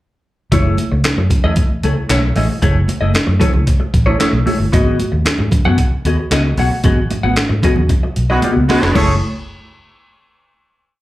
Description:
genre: funk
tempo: 114 BPM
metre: 4/4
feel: straight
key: F# dorian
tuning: A4 = 442 Hz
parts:
  - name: semi-hollow electric guitar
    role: accompaniment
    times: 0.5-9.1 s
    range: A3 to F#5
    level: -18 LUFS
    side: left 2 dB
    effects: phaser, plate reverb, slapback echo
  - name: vintage muted fingered electric bass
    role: bass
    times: 0.5-9.2 s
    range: E#1 to G#2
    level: -16 LUFS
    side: equal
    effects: none
  - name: breakbeat sampler-style drum kit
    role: drums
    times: 0.5-9.1 s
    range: crash cymbal, handclaps, hi-hat, kick drum, snare drum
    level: -16 LUFS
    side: equal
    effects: none
  - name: congas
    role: percussion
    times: 0.5-9.2 s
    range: none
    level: -23 LUFS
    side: right 3 dB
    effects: slapback echo
  - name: warm horn section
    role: second line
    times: 8.3-9.1 s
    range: G#3 to C#5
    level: -18 LUFS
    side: right 2 dB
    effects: plate reverb, slapback echo
room: light reverb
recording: live gig heard through the venue's PA, club reverb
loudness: -12 LUFS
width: side -16 dB against mid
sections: 0.5-9.0 groove; 9.0-11.0 final chord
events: band accent 6.8-9.0; drum fill 7.9-9.0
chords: 0.5 F#m9; 4.7 G#m7; 9.0 F#m9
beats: | 0.52 1.04 1.57 2.09 | 2.62 3.15 3.67 4.20 | 4.72 5.25 5.78 6.31 | 6.84 7.37 7.89 8.43 | 8.96

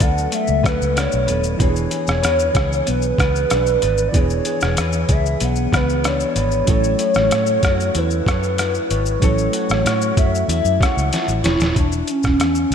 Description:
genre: indie pop, bedroom pop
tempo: 94 BPM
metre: 4/4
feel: straight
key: unclear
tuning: A4 = 440 Hz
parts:
  - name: hollow clarinet-like synth lead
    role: melody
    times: 0.0-12.7 s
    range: C#4 to F#5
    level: -20 LUFS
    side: equal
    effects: lush chorus, slapback echo
  - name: electric guitar through a small old amp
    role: accompaniment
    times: 0.0-12.3 s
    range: E3 to C#5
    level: -25 LUFS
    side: left 4 dB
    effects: lush chorus, vibrato effect, slapback echo
  - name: tine electric piano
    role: accompaniment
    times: 0.0-11.8 s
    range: E3 to A4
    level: -28 LUFS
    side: right 5 dB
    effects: cassette tape, slapback echo
  - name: vintage muted fingered electric bass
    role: bass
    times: 0.0-12.7 s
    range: D#1 to A2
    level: -21 LUFS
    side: equal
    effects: none
  - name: trip hop sampler-style drum kit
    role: drums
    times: 0.0-12.7 s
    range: hi-hat, kick drum, rim click, shaker, snare drum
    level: -21 LUFS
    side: equal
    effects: none
room: moderate lush hall reverb, RT60 2.7 s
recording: big arena sound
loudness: -16 LUFS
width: side -7 dB against mid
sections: 0.0-11.8 A section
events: drum fill 11.1-11.8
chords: 0.0 Bm7; 1.6 E7; 6.7 A6; 11.8 E5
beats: 0.33 0.96 | 1.60 2.23 2.87 3.51 | 4.14 4.78 5.41 6.05 | 6.68 7.32 7.95 8.59 | 9.22 9.86 10.49 11.12 | 11.76 12.39

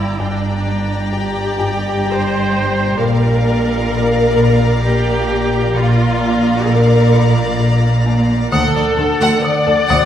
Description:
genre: cinematic, suspense film score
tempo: 65 BPM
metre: 3/4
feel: straight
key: unclear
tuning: A4 = 444 Hz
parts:
  - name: clear chamber violin section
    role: melody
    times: 0.0-10.1 s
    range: F#5 to Bb5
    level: -27 LUFS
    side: left 5 dB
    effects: none
  - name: clear chamber violin section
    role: second line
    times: 0.0-10.1 s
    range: A4 to G5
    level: -23 LUFS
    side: left 1 dB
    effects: none
  - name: rich chamber viola section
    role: accompaniment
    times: 0.0-10.1 s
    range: D4 to D5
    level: -18 LUFS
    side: equal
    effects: none
  - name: rich chamber double bass section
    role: bass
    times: 0.0-10.0 s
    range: G1 to D2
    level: -21 LUFS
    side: right 2 dB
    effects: none
  - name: rich studio cello section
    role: bass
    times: 0.0-10.0 s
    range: D2 to Bb2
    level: -20 LUFS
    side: right 2 dB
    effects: none
  - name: vibraphone with hard mallets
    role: texture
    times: 0.0-10.1 s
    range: G4 to G5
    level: -27 LUFS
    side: left 2 dB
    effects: none
  - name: folk marimba with hard mallets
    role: riff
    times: 0.2-10.1 s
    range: G2 to D4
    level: -18 LUFS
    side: left 2 dB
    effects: none
room: wet scoring stage reverb, RT60 1.8 s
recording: heard from further back in the room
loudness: -13 LUFS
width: side -10 dB against mid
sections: 0.0-10.1 A section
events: none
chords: 0.0 Gm; 3.0 Bb; 8.5 D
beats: | 0.20 1.13 2.05 | 2.97 3.90 4.82 | 5.74 6.67 7.59 | 8.51 9.44

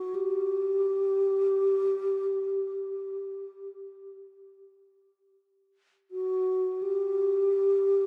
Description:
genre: world meditative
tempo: free time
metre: none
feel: none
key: unclear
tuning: A4 = 440 Hz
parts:
  - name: breathy mellow bass flute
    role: solo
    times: 0.0-8.1 s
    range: F#4 to G4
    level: -28 LUFS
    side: equal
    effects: diffuse ambient delay
room: wet cathedral reverb, RT60 4.7 s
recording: dark, warm production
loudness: -28 LUFS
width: mono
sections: 0.0-8.1 A section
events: none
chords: none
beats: free time

